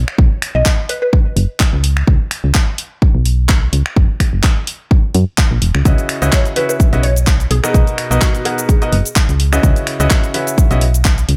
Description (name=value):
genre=piano house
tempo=127 BPM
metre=4/4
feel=swing 55% on 16ths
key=unclear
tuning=A4 = 439 Hz
part: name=solid FM bass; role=bass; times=0.0-11.4 s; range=E1 to F#2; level=-16 LUFS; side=equal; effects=sidechain pumping
part: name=house drum kit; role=drums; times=0.1-11.4 s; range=finger snaps, handclaps, hi-hat, shaker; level=-22 LUFS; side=equal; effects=none
part: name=electronic kick drum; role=drums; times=0.2-11.2 s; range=none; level=-15 LUFS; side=equal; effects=none
part: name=mallet-like synth pluck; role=melody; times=0.5-1.1, 6.2-8.8 s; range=F#4 to D#5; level=-24 LUFS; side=equal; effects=ensemble chorus, vintage 12-bit sampler grit, delay
part: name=bright baby grand piano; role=riff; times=5.9-10.8 s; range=B2 to F#5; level=-22 LUFS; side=equal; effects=sidechain pumping, delay
room=little or no reverb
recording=none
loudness=-14 LUFS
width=mono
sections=0.0-11.4 A section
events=none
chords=0.0 B5; 1.8 Bsus2; 4.0 F#7(no3); 5.9 C#m11; 7.5 Bmaj7; 9.4 C#m11